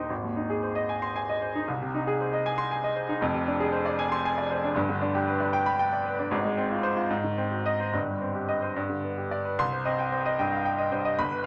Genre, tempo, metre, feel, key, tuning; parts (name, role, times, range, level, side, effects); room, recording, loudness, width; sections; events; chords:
classical, virtuoso piano study; 72-80 BPM (dotted quarters); 6/8; rubato; C minor; A4 = 440 Hz
clear grand piano; solo; 0.0-11.5 s; Eb1 to C6; -28 LUFS; equal
moderate studio reverb, RT60 0.8 s; -28 LUFS; mono
0.0-9.6 A section; 9.6-11.5 B section
0.1 Ab; 1.7 Ab/C; 3.2 Dm7b5/F; 4.8 G; 6.3 Fm/Ab; 7.1 Ab7; 7.9 Cm/G; 8.8 G; 9.6 Cm